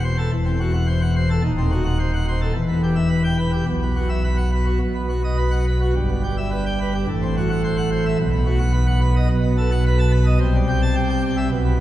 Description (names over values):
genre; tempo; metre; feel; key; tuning
classical, organ toccata; 108 BPM; 4/4; straight; unclear; A4 = 440 Hz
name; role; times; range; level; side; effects
pipe organ, plenum; solo; 0.0-11.8 s; D#1 to A5; -18 LUFS; equal; none
room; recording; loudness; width
wet church reverb, RT60 3.0 s; heard from further back in the room; -18 LUFS; side -14 dB against mid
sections
0.0-11.8 A section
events
none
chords
0.0 F#m7b5/E; 1.4 D#dim7; 2.5 Em; 3.7 Bsus4; 4.8 B; 6.0 Em/G; 7.1 F#m7b5/A; 8.2 B; 9.3 B7; 10.4 C6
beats
0.33 0.88 | 1.44 1.99 2.54 3.10 | 3.67 4.24 4.81 5.38 | 5.95 6.52 7.08 7.63 | 8.19 8.75 9.30 9.85 | 10.41 10.96 11.52